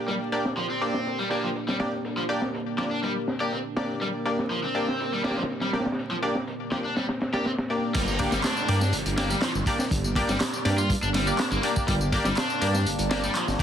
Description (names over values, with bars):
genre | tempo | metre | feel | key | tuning
breakbeat, breaks | 122 BPM | 4/4 | straight | G minor | A4 = 440 Hz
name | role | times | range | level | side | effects
deep dark ambient pad | sustained chords | 0.0-13.6 s | Bb3 to D5 | -34 LUFS | right 1 dB | chorus, built-in reverb, vintage 12-bit sampler grit, sidechain pumping
band-passed chord stab | stabs | 0.0-13.6 s | Bb3 to D5 | -30 LUFS | left 1 dB | chorus, ping-pong delay
cranked stack guitar | riff | 0.1-13.4 s | F3 to G4 | -30 LUFS | left 1 dB | overdrive, ping-pong delay
crunchy breakbeat drum kit | drums | 0.1-13.6 s | crash cymbal, hi-hat, kick drum, snare drum | -30 LUFS | equal | low-pass filter on kick, low-pass filter on hats, low-pass filter on cymbals, low-pass filter on snare, low-pass filter on room
dark detuned saw bass | bass | 7.9-13.6 s | G1 to G2 | -27 LUFS | equal | none
punchy analog drum machine | drums | 7.9-13.6 s | handclaps, ride cymbal, tambourine | -33 LUFS | right 1 dB | low-pass filter on perc, low-pass filter on cymbals, low-pass filter on snare, low-pass filter on room
downlifter | sound effects | 7.9-11.9 s | none | -36 LUFS | right 2 dB | none
room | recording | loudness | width
moderate studio reverb, RT60 0.6 s | dense, heavily limited modern master, vinyl crackle | -24 LUFS | side -9 dB against mid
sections
0.0-7.9 A section; 7.9-13.6 B section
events
drop 7.9-13.6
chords
0.0 Gm